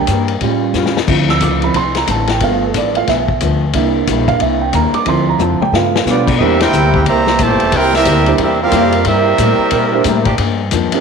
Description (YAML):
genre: jazz, big band swing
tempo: 181 BPM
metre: 4/4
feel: swing 62% on 8ths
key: C major from 6.4 s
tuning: A4 = 439 Hz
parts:
  - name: dark baby grand piano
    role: accompaniment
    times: 0.0-11.0 s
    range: F3 to E6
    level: -16 LUFS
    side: right 8 dB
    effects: none
  - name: upright bass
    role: bass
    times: 0.0-11.0 s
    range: E1 to B2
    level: -18 LUFS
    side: left 1 dB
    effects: none
  - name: picked steel-string acoustic guitar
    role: accompaniment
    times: 0.1-10.9 s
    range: G2 to B4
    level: -21 LUFS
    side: left 10 dB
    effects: none
  - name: vintage drum kit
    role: drums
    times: 0.1-11.0 s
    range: crash cymbal, hi-hat, kick drum, ride cymbal, snare drum, toms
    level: -19 LUFS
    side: left 8 dB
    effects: none
  - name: bright trumpet section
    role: melody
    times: 6.1-10.4 s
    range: B3 to Bb5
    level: -15 LUFS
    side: right 1 dB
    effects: none
  - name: warm trombone section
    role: second line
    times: 6.1-10.4 s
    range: Bb2 to Bb4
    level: -16 LUFS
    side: right 8 dB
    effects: none
  - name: mellow saxophone section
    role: sustained chords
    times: 6.4-10.3 s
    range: E3 to G4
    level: -24 LUFS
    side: left 1 dB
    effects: none
room: moderate echo chamber reverb, RT60 1.4 s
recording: 1960s-style stereo with parts hard left and right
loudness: -11 LUFS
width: side -5 dB against mid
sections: 0.0-6.4 A section; 6.4-11.0 B section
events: grand piano solo 0.0-6.4; drum fill 0.7-1.1, 5.4-6.1; band accent 6.6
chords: 0.4 Aaug7; 1.1 Dm7; 2.4 G7; 3.7 C7; 5.1 Dm7; 5.7 G7; 6.4 C7; 10.4 Gm7